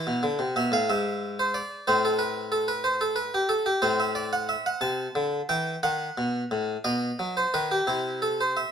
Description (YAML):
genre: classical, baroque-style suite movement for harpsichord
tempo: 60 BPM (dotted quarters)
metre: 6/8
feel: rubato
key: A minor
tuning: A4 = 435 Hz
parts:
  - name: harpsichord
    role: solo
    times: 0.0-8.7 s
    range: G#2 to A5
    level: -24 LUFS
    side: equal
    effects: none
room: moderate stone room reverb, RT60 1.1 s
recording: none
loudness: -24 LUFS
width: side -8 dB against mid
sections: 0.0-8.7 A section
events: none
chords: 0.0 E5; 0.9 N.C.; 1.9 Am; 3.8 Amadd11; 5.8 B; 7.9 N.C.